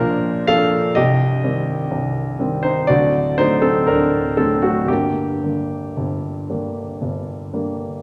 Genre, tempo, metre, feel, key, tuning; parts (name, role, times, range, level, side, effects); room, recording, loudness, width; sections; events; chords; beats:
classical, romantic character piece for solo piano; 56-64 BPM; 4/4; rubato; G minor; A4 = 438 Hz
warm concert grand piano; solo; 0.0-8.0 s; C1 to F5; -19 LUFS; equal
wet recital hall reverb, RT60 1.5 s; -19 LUFS; mono
0.0-8.0 A section
0.0 Bb; 1.0 Cm; 2.9 D; 4.9 Gm
0.02 | 0.97 1.91 2.88 3.88 | 4.90 5.96 7.01